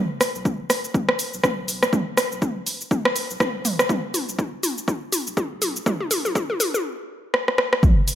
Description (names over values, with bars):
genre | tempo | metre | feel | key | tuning
afro house | 122 BPM | 4/4 | swing 58% on 16ths | unclear | A4 = 444 Hz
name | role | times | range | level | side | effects
warm sub bass | bass | 0.0-7.9 s | F#1 to B1 | -34 LUFS | equal | sidechain pumping, high-pass filter
deep house drum kit | drums | 0.2-8.2 s | hi-hat, rim click, shaker, toms | -22 LUFS | equal | overdrive, high-pass filter on perc, studio reverb, high-pass filter on snare, high-pass filter on toms, high-pass filter on hats
electronic kick drum | drums | 0.5-7.9 s | none | -22 LUFS | equal | overdrive, high-pass filter on kick, studio reverb
room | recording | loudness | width
light reverb, digital ambience | none | -20 LUFS | side -11 dB against mid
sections
0.0-7.8 A section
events
build-up 0.0-7.8; drum fill 0.0-6.8, 7.3-7.8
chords
none